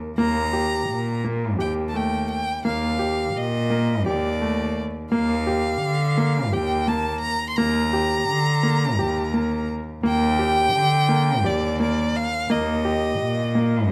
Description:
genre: contemporary instrumental, chamber music in an uneven meter.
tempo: 170 BPM (eighths).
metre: 7/8.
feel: straight.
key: Eb lydian.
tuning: A4 = 440 Hz.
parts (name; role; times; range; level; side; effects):
rich cello; bass; 0.0-13.9 s; Eb2 to D3; -26 LUFS; equal; none.
clear violin; melody; 0.2-13.9 s; D5 to C6; -28 LUFS; equal; none.
clear baby grand piano; arpeggios; 0.2-13.8 s; A3 to G4; -27 LUFS; equal; none.
room: light reverb.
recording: close, detailed microphones.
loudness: -22 LUFS.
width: mono.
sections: 0.0-13.9 A section.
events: none.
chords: 0.0 Eb; 5.1 Gm/Eb; 12.5 Eb.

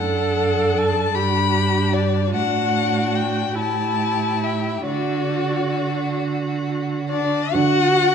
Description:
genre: classical, slow romantic movement for string quartet.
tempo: 44-52 BPM (dotted quarters).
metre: 6/8.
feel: rubato.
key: D major.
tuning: A4 = 437 Hz.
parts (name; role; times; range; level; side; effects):
warm violin; melody; 0.0-8.1 s; D5 to B5; -23 LUFS; left 9 dB; none.
rich violin; second line; 0.0-7.3 s; D4 to G4; -28 LUFS; left 2 dB; none.
rich viola; accompaniment; 0.0-8.1 s; D4 to A4; -24 LUFS; right 2 dB; none.
rich cello; bass; 0.0-8.1 s; F#2 to D3; -23 LUFS; right 5 dB; none.
room: wet recital hall reverb, RT60 1.5 s.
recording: dark, warm production.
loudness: -18 LUFS.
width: side -7 dB against mid.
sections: 0.0-7.6 A section.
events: none.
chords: 0.0 D/F#; 1.2 G; 2.3 D/A; 3.6 A5; 4.9 D.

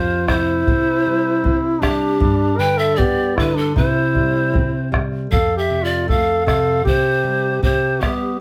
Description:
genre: andean folk, Andean ensemble.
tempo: 78 BPM.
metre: 2/4.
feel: straight.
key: unclear.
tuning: A4 = 442 Hz.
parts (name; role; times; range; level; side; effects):
mellow duduk; melody; 0.0-8.4 s; B3 to B4; -22 LUFS; equal; plate reverb.
breathy bright pan flute; second line; 0.0-8.4 s; G4 to G5; -24 LUFS; equal; none.
nylon-string guitar; accompaniment; 0.0-8.4 s; F2 to C4; -25 LUFS; equal; none.
bombo; percussion; 0.3-8.2 s; none; -22 LUFS; equal; none.
room: moderate studio reverb, RT60 0.5 s.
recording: none.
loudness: -18 LUFS.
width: mono.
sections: 0.0-8.4 A section.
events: none.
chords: 0.0 F5; 0.7 C; 2.2 G; 3.8 C; 5.3 F; 6.9 C5.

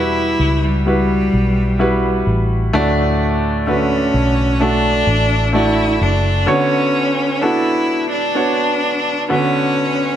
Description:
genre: pop ballad.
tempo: 64 BPM.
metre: 4/4.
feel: straight.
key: D major.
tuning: A4 = 439 Hz.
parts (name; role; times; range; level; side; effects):
bright cello; melody; 0.0-10.2 s; G3 to E4; -18 LUFS; equal; none.
bright concert grand piano; accompaniment; 0.0-10.2 s; A2 to D5; -18 LUFS; equal; none.
vintage muted fingered electric bass; bass; 0.0-6.4 s; F#1 to E2; -18 LUFS; equal; none.
room: light reverb, small room ambience.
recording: none.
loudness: -14 LUFS.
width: side -10 dB against mid.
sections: 0.0-10.2 A section.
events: none.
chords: 0.0 Emadd9; 2.7 D; 6.5 Bmadd9.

